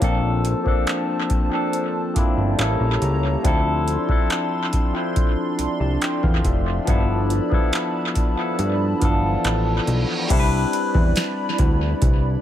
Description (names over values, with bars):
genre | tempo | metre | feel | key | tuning
contemporary R&B | 70 BPM | 4/4 | straight | C major | A4 = 440 Hz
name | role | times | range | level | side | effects
barky tine electric piano | accompaniment | 0.0-12.4 s | E3 to A5 | -23 LUFS | left 2 dB | phaser
hollow soft pad | sustained chords | 0.0-12.4 s | D4 to C6 | -29 LUFS | right 3 dB | chorus, sidechain pumping
fat analog bass | bass | 0.0-12.4 s | F1 to G2 | -22 LUFS | equal | none
booming analog drum machine | drums | 0.0-12.2 s | crash cymbal, handclaps, hi-hat, kick drum, snare drum | -22 LUFS | equal | tape echo
reverse cymbal | sound effects | 9.6-10.3 s | none | -32 LUFS | right 4 dB | none
room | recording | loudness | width
little or no reverb | echo-heavy mix | -18 LUFS | side -11 dB against mid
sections
0.0-10.3 A section; 10.3-12.4 B section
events
tine electric piano fill 8.6-10.3; reverse cymbal 9.6-10.3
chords
0.0 Bbmaj9; 2.6 A7b9; 3.4 Dm9; 6.9 G13; 10.3 Cmaj9